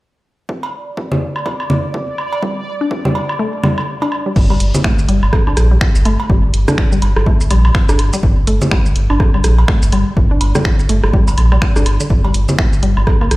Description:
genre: minimal techno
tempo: 124 BPM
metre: 4/4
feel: swing 59% on 16ths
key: G minor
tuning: A4 = 438 Hz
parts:
  - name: electronic kick drum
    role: drums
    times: 0.5-13.2 s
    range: none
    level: -15 LUFS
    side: equal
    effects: high-pass filter on kick, studio ambience
  - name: bubbling stepped-filter texture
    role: texture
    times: 0.8-4.4 s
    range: D5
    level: -26 LUFS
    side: right 1 dB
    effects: chorus, built-in reverb, sidechain pumping
  - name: electronic cowbell, congas, woodblock and rim click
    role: percussion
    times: 0.6-13.4 s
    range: none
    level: -20 LUFS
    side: right 1 dB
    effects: studio ambience, dub echo
  - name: resonant blip pluck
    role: riff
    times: 2.4-13.3 s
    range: D3 to D4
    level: -21 LUFS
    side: left 1 dB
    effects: chorus, sidechain pumping, tape echo
  - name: round analog bass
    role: bass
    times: 4.4-13.4 s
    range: G1 to Bb1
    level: -13 LUFS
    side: equal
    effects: tube saturation, sidechain pumping
  - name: punchy analog drum machine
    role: drums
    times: 4.4-13.4 s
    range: crash cymbal, finger snaps, hi-hat, shaker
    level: -23 LUFS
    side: equal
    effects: studio ambience
room: digital ambience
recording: played on a big sound system in a bare room, stone room reverb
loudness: -12 LUFS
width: side -19 dB against mid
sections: 0.5-4.4 A section; 4.4-13.4 B section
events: kick drops out 3.4-4.4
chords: 0.5 G5; 4.4 N.C.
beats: | 0.49 0.97 1.46 1.94 | 2.42 2.91 3.39 3.88 | 4.36 4.84 5.33 5.81 | 6.30 6.78 7.26 7.75 | 8.23 8.71 9.20 9.68 | 10.17 10.65 11.13 11.62 | 12.10 12.59 13.07

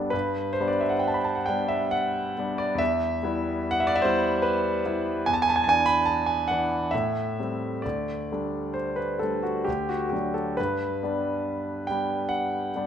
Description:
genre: classical, romantic nocturne for solo piano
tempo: 64-75 BPM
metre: 3/4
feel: rubato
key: G major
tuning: A4 = 439 Hz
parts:
  - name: clear concert grand piano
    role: solo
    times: 0.0-12.9 s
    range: D2 to B5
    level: -24 LUFS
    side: equal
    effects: none
room: moderate recital hall reverb, RT60 1.5 s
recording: none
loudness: -24 LUFS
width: side -8 dB against mid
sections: 0.1-12.9 A section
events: none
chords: 0.1 G; 2.8 Em; 5.2 E5; 6.9 Am7; 7.8 Dsus4; 9.7 D; 10.6 G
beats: | 0.13 1.03 1.92 | 2.80 3.63 4.43 | 5.25 6.07 6.92 | 7.84 8.76 9.67 | 10.58 11.45 12.31

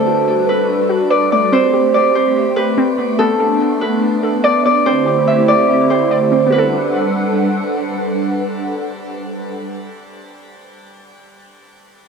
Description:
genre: hip hop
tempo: 144 BPM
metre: 4/4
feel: half-time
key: G major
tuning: A4 = 440 Hz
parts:
  - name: Celtic harp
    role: melody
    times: 0.0-8.6 s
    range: A4 to E5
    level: -15 LUFS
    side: right 2 dB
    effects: low-pass filter, tape echo
  - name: hollow soft pad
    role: sustained chords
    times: 0.0-9.6 s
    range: D3 to F#5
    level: -18 LUFS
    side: equal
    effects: ensemble chorus
  - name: warbly dusty pluck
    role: arpeggios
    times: 0.0-9.7 s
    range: A3 to D5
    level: -22 LUFS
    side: equal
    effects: chorus, phaser, low-pass filter, tape echo
room: light reverb, small room reverb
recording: dry, gritty hardware recording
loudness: -12 LUFS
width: side -5 dB against mid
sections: 0.0-6.5 A section; 6.5-9.9 B section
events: none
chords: 0.0 Gmaj9; 1.5 Am9; 3.2 Bm7; 4.9 D7sus4; 6.5 Gmaj9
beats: 0.27 0.69 1.11 | 1.52 1.94 2.36 2.77 | 3.19 3.61 4.02 4.44 | 4.86 5.27 5.69 6.11 | 6.52 6.94 7.36 7.77 | 8.19 8.61 9.02 9.44

